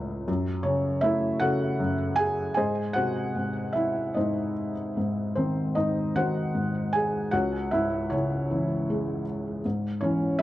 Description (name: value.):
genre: classical, lyrical solo piano.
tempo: 77 BPM.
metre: 3/4.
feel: rubato.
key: C# minor.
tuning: A4 = 440 Hz.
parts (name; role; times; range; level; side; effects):
felt-muted upright piano; solo; 0.0-10.4 s; C#2 to G#5; -24 LUFS; equal; none.
room: moderate studio reverb, RT60 0.5 s.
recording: cassette tape.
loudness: -24 LUFS.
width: side -15 dB against mid.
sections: 0.0-10.4 A section.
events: none.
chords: 0.3 F#m; 2.6 G#; 7.3 C#m; 9.6 C#m/G#.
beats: | 0.28 1.03 1.80 | 2.58 3.36 4.16 | 4.97 5.76 6.54 | 7.33 8.11 8.88 | 9.65 10.39.